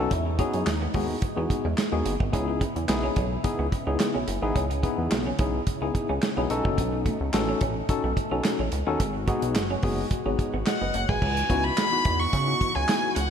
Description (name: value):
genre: early-eighties boogie funk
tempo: 108 BPM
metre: 4/4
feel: straight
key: C# minor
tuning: A4 = 440 Hz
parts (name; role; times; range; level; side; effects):
- tine electric piano; accompaniment; 0.0-13.2 s; B3 to F#5; -29 LUFS; left 4 dB; medium stereo tremolo
- warm analog pad; sustained chords; 0.0-13.3 s; B2 to F#4; -36 LUFS; equal; chorus
- semi-hollow electric guitar; riff; 0.0-11.2 s; G#3 to E4; -35 LUFS; right 5 dB; analog chorus
- chorused synth bass; bass; 0.0-13.3 s; F#1 to C#3; -29 LUFS; equal; none
- modern studio drum kit; drums; 0.1-13.3 s; crash cymbal, handclaps, hi-hat, kick drum, snare drum; -28 LUFS; right 1 dB; none
- clear erhu; melody; 10.7-13.3 s; F#5 to C#6; -25 LUFS; equal; none
room: moderate lush hall reverb, RT60 2.4 s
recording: bright 1980s-style digital production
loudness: -23 LUFS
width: side -8 dB against mid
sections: 0.0-11.2 A section; 11.2-13.3 B section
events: none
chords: 0.1 Emaj7; 6.5 B7; 9.0 G#m7; 11.2 C#m11